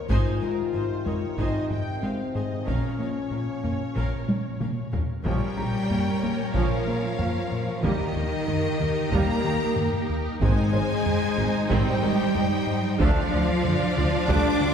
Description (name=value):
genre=cinematic, hybrid orchestral and electronic film score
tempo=93 BPM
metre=4/4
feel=straight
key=Bb dorian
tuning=A4 = 440 Hz
part: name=warm symphonic violin section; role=second line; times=0.0-14.7 s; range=Eb4 to G5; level=-34 LUFS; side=equal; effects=none
part: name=felt-muted upright piano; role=texture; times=0.0-14.7 s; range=G3 to C6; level=-39 LUFS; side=equal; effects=none
part: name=rich symphonic violin section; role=melody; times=0.1-14.7 s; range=Eb5 to D6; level=-34 LUFS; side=left 2 dB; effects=none
part: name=clear studio viola section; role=accompaniment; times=0.1-14.7 s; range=Db3 to Eb5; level=-34 LUFS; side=right 1 dB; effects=none
part: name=warm French horn section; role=sustained chords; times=0.1-14.7 s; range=Eb3 to G4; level=-30 LUFS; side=left 5 dB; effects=none
part: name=warm trombone section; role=sustained chords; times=0.1-14.5 s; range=C3 to D4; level=-36 LUFS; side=right 4 dB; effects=none
part: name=rubbery square bass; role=riff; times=0.1-14.7 s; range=D2 to Bb3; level=-31 LUFS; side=left 2 dB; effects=none
part: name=dark symphonic cello section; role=bass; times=0.1-14.7 s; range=Ab2 to D4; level=-30 LUFS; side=right 3 dB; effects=none
part: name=rich symphonic double bass section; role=bass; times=0.1-14.7 s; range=Ab1 to Eb2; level=-30 LUFS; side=right 2 dB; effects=none
part: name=taiko ensemble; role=drums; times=0.1-14.7 s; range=none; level=-29 LUFS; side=equal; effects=none
room=wet scoring stage reverb, RT60 2.2 s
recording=heard from further back in the room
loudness=-22 LUFS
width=side -7 dB against mid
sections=0.0-5.3 A section; 5.3-14.7 B section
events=drum fill 4.3-5.3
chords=0.1 Ab; 2.7 Bbm; 7.8 Eb; 10.4 Ab; 13.0 Dm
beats=| 0.09 0.74 1.38 2.03 | 2.67 3.32 3.96 4.61 | 5.25 5.90 6.54 7.19 | 7.83 8.48 9.13 9.77 | 10.42 11.06 11.71 12.35 | 13.00 13.64 14.29